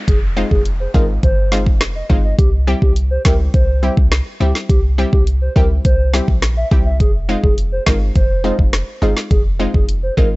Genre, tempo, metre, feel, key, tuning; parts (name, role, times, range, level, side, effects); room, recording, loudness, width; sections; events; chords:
dancehall; 104 BPM; 4/4; straight; F minor; A4 = 439 Hz
downlifter; sound effects; 0.0-2.4 s; -37 LUFS; equal
hollow clarinet-like synth lead; melody; 0.1-10.3 s; G4 to E5; -23 LUFS; equal; chorus, analog delay
clean 808-style bass; bass; 0.1-10.4 s; F1 to Db2; -17 LUFS; equal
afro-pop drum kit; drums; 0.1-10.3 s; hi-hat, kick drum, rim click, snare drum; -15 LUFS; equal; vintage 12-bit sampler grit
analog pluck; accompaniment; 0.4-10.3 s; G3 to G4; -22 LUFS; left 1 dB; chorus
little or no reverb; dry, gritty hardware recording, nothing above 7.9 kHz; -13 LUFS; side -22 dB against mid
0.0-10.4 A section
0.0 Fm7; 2.4 C; 7.0 Fm7